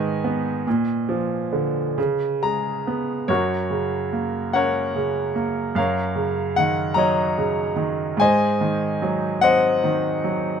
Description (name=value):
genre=classical, lyrical solo piano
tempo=44-50 BPM (dotted quarters)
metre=6/8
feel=rubato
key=F# major from 3.3 s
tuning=A4 = 439 Hz
part: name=clear grand piano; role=solo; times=0.0-10.6 s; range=F#2 to Bb5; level=-20 LUFS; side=equal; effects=none
room=light reverb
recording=close, detailed microphones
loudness=-20 LUFS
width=side -7 dB against mid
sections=0.0-3.3 A section; 3.3-10.6 B section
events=grand piano fill 2.0-3.3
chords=0.0 Abm; 0.7 Bb; 2.0 Db5; 3.3 F#; 5.8 D#m7/F#; 8.2 G#7